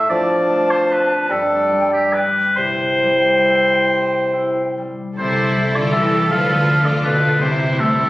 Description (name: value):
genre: classical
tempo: 45-54 BPM (dotted quarters)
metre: 6/8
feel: rubato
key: C major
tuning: A4 = 440 Hz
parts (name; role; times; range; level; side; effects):
- clear clarinet; second line; 0.0-4.8 s; D4 to E4; -28 LUFS; left 1 dB; none
- clear oboe; second line; 0.0-8.1 s; G4 to F5; -18 LUFS; equal; none
- warm bassoon; accompaniment; 0.0-4.8 s; C3 to G3; -18 LUFS; equal; none
- concert harp; arpeggios; 0.0-8.1 s; F2 to D5; -24 LUFS; left 2 dB; none
- mellow silver concert flute; second line; 0.1-4.8 s; G5 to A5; -26 LUFS; equal; none
- warm symphonic violin section; melody; 5.2-8.1 s; E4 to F4; -29 LUFS; left 2 dB; none
- rich symphonic violin section; second line; 5.2-8.1 s; C4 to B4; -28 LUFS; left 1 dB; none
- rich symphonic viola section; accompaniment; 5.2-8.1 s; G4 to A4; -24 LUFS; right 1 dB; none
- clear symphonic cello section; bass; 5.2-8.1 s; A2 to F3; -22 LUFS; equal; none
- rich symphonic double bass section; bass; 5.2-8.1 s; C2 to D2; -27 LUFS; right 1 dB; none
room: moderate recital hall reverb, RT60 1.7 s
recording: recorded on a phone in the room, studio reverb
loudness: -14 LUFS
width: side -18 dB against mid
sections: 0.0-5.2 A section; 5.2-8.1 B section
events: none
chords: 0.1 Dm/F; 1.3 G5; 2.6 C; 6.3 Bdim/D; 7.4 C